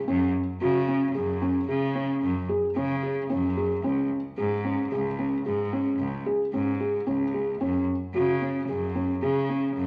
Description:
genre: contemporary instrumental, chamber music in an uneven meter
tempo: 112 BPM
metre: 7/4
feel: straight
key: unclear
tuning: A4 = 436 Hz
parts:
  - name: felt-muted upright piano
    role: arpeggios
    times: 0.1-9.8 s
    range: C#4 to G#4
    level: -28 LUFS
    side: equal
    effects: none
  - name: rich cello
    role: bass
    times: 0.1-9.9 s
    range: C#2 to C#3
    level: -32 LUFS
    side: equal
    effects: none
room: wet recital hall reverb, RT60 1.4 s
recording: none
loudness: -27 LUFS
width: mono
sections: 0.0-9.9 A section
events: none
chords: 0.1 F#sus2; 3.8 C#5; 7.6 F#sus2

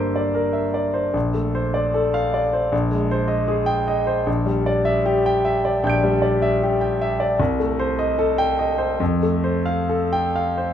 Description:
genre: classical, impressionist solo piano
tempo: 63-79 BPM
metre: 4/4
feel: rubato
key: G minor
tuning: A4 = 440 Hz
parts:
  - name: warm concert grand piano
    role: solo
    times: 0.0-10.7 s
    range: Bb1 to D7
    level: -18 LUFS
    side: equal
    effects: none
room: moderate recital hall reverb, RT60 1.6 s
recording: minimal, uncompressed stereo recording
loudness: -18 LUFS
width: side -9 dB against mid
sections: 0.0-10.7 A section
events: none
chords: 0.0 C9/G; 1.1 Bbmaj9; 2.7 Abmaj7/Bb; 4.3 Gm6/Bb; 7.4 Cm6; 9.0 Fadd9

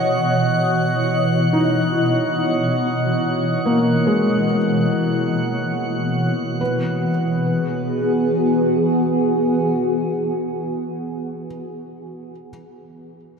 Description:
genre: ambient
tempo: 71 BPM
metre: 4/4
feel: straight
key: E major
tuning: A4 = 442 Hz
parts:
  - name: shimmering ambient pad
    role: sustained chords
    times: 0.0-10.8 s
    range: B2 to D#5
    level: -19 LUFS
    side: equal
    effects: chorus, built-in reverb, phaser
  - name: felt-muted upright piano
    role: arpeggios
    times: 0.0-12.5 s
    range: G#3 to D#5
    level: -24 LUFS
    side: left 1 dB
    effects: ping-pong delay
  - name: drifting glass-harmonics texture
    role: texture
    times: 0.0-6.6 s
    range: F#5 to F#6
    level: -27 LUFS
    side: right 2 dB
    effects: chorus, built-in reverb
room: wet cathedral reverb, RT60 7.2 s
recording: in a vast, echoing space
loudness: -17 LUFS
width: side -5 dB against mid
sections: 0.0-6.6 A section; 6.6-10.0 B section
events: none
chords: 0.0 Badd9; 6.6 E

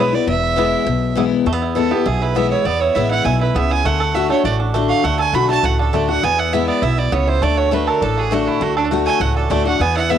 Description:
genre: bluegrass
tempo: 202 BPM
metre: 4/4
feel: straight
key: E mixolydian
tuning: A4 = 440 Hz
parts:
  - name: bluegrass banjo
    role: melody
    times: 0.0-10.2 s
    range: A3 to A4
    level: -22 LUFS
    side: right 7 dB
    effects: cassette tape
  - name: clear fiddle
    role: melody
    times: 0.0-10.2 s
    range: D4 to B5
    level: -19 LUFS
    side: right 6 dB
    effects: cassette tape
  - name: picked steel-string acoustic guitar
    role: accompaniment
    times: 0.0-10.2 s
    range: E2 to F#4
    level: -20 LUFS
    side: left 8 dB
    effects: none
  - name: upright bass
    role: bass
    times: 0.0-10.2 s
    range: E1 to E2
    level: -21 LUFS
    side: equal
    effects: none
room: moderate spring reverb, RT60 2.6 s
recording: home recording on cassette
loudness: -15 LUFS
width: side -9 dB against mid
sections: 0.0-1.5 A section; 1.5-10.2 B section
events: fiddle solo 1.5-10.2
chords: 0.0 E; 3.9 D; 6.2 E; 7.4 D

